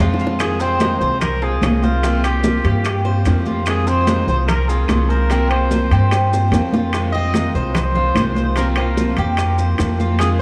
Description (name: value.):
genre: latin, Cuban son and guajira.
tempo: 147 BPM.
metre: 4/4.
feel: straight.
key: F minor.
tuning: A4 = 440 Hz.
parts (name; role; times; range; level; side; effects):
nylon-string guitar; accompaniment; 0.0-10.4 s; C3 to F4; -26 LUFS; equal; none.
Cuban tres; arpeggios; 0.0-10.4 s; C4 to C5; -27 LUFS; equal; analog delay.
upright bass; bass; 0.0-10.4 s; C2 to G2; -21 LUFS; equal; none.
bongos; percussion; 0.0-10.4 s; none; -31 LUFS; equal; none.
maracas; percussion; 0.2-10.4 s; none; -42 LUFS; equal; none.
warm trumpet; melody; 0.4-10.4 s; F4 to Eb5; -25 LUFS; equal; analog delay.
claves; percussion; 0.4-10.4 s; none; -40 LUFS; equal; none.
congas; percussion; 0.4-10.4 s; none; -27 LUFS; equal; none.
timbales; percussion; 0.4-10.4 s; none; -31 LUFS; equal; none.
room: moderate lush hall reverb, RT60 2.7 s.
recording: dreamy mix soaked in reverb.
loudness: -17 LUFS.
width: mono.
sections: 0.4-10.4 A section.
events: drum fill 0.0-0.4, 6.1-6.9.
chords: 0.4 Fm7; 2.0 C7sus4; 3.7 Fm7; 5.3 C7sus4; 6.9 Fm7; 8.6 C7sus4.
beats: | 0.40 0.81 1.21 1.62 | 2.03 2.44 2.85 3.26 | 3.66 4.07 4.48 4.89 | 5.30 5.71 6.12 6.53 | 6.93 7.34 7.75 8.16 | 8.57 8.97 9.38 9.79 | 10.20.